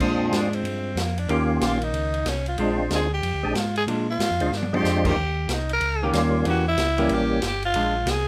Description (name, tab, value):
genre	soul jazz organ trio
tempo	186 BPM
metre	4/4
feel	swing 64% on 8ths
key	unclear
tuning	A4 = 442 Hz
part	percussive tonewheel organ	melody	0.0-7.4 s	G3 to Ab4	-27 LUFS	equal	slow rotary speaker, overdrive, chorus vibrato
part	vintage hollow-body jazz guitar	accompaniment	0.0-7.9 s	Eb3 to G4	-30 LUFS	equal	none
part	mellow tonewheel organ	bass	0.0-8.3 s	G1 to Bb2	-29 LUFS	equal	slow rotary speaker
part	vintage drum kit	drums	0.0-8.2 s	crash cymbal, hi-hat, kick drum, ride cymbal, snare drum, toms	-33 LUFS	equal	none
part	growling tenor saxophone	melody	0.4-8.3 s	Bb3 to Bb4	-28 LUFS	equal	none
room	moderate club reverb, RT60 0.5 s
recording	none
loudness	-23 LUFS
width	mono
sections	0.0-8.3 A section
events	tenor saxophone solo 0.0-8.3; drum fill 4.5-4.8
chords	0.0 Bb7; 1.3 Eb7; 2.6 Bb7; 5.2 Eb7; 6.5 Edim7; 7.7 Bb7